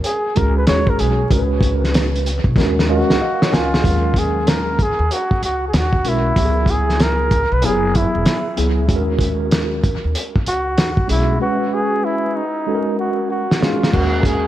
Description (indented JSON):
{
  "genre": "hip hop, jazz-hop",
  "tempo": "95 BPM",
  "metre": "4/4",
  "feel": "swing 64% on 16ths",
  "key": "Eb phrygian",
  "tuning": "A4 = 442 Hz",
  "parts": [
    { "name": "cloth-damped thuddy drum kit", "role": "drums", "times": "0.0-14.4 s", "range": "crash cymbal, hi-hat, kick drum, snare drum", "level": "-18 LUFS", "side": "equal", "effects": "none" },
    { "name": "breathy flugelhorn", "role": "melody", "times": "0.1-14.5 s", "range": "Eb4 to Db5", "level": "-21 LUFS", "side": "equal", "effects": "dub echo" },
    { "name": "mellow tine electric piano", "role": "accompaniment", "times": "0.4-14.5 s", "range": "Gb3 to Ab5", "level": "-21 LUFS", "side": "right 1 dB", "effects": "medium stereo tremolo, dub echo" },
    { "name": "upright bass", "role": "bass", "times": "0.4-14.5 s", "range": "Fb1 to Eb2", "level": "-20 LUFS", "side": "equal", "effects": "none" }
  ],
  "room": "light reverb",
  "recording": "echo-heavy mix, vinyl crackle",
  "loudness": "-15 LUFS",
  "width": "side -13 dB against mid",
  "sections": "0.0-3.8 A section; 3.8-13.9 B section",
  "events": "flugelhorn solo 0.0-3.8; drum fill 2.6-3.8, 12.7-13.9; tine electric piano fill 2.6-3.8; drums muted 11.4-13.9",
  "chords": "0.0 Ebm7; 1.3 Db7sus4; 2.6 Ebm7; 6.4 Dbm7; 7.6 Gb9sus4; 8.9 Ebm7; 11.4 Db7sus4; 12.7 Ab13sus4; 13.9 Ebm7"
}